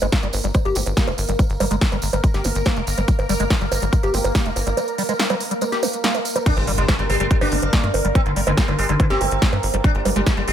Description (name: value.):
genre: psychedelic trance.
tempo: 142 BPM.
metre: 4/4.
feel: straight.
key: G phrygian.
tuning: A4 = 440 Hz.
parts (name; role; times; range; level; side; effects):
bubbling stepped-filter texture; sustained chords; 0.0-10.5 s; Bb3 to Bb4; -28 LUFS; right 2 dB; chorus, built-in reverb, sidechain pumping.
liquid acid bass; riff; 0.0-10.4 s; F3 to G4; -26 LUFS; moving between left 3 dB and right 3 dB; phaser, auto-pan, sidechain pumping, digital delay.
tight sequencer bass; bass; 0.0-10.5 s; F1 to G2; -23 LUFS; equal; none.
big-room dance drum kit; drums; 0.0-10.5 s; bongos, crash cymbal, hi-hat, snare drum; -24 LUFS; right 2 dB; none.
tambourine; percussion; 0.0-6.4 s; none; -33 LUFS; right 5 dB; none.
electronic kick drum; drums; 0.1-10.3 s; none; -18 LUFS; equal; none.
resonant blip pluck; second line; 0.8-8.4 s; Bb3 to C4; -37 LUFS; left 4 dB; none.
sitar; melody; 6.5-10.5 s; D3 to D4; -23 LUFS; equal; phaser, sidechain pumping, digital delay.
impact; sound effects; 6.5-8.2 s; none; -29 LUFS; equal; none.
room: light reverb.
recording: none.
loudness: -17 LUFS.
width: side -10 dB against mid.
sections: 0.0-6.5 A section; 6.5-10.5 B section.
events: filter sweep on acid bass 0.0-6.5; drop 6.5-10.5; impact 6.5-8.2.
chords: 0.0 N.C.; 6.5 G5.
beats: 0.12 0.55 0.97 | 1.39 1.81 2.24 2.66 | 3.08 3.50 3.93 4.35 | 4.77 5.19 5.62 6.04 | 6.46 6.88 7.31 7.73 | 8.15 8.57 9.00 9.42 | 9.84 10.27.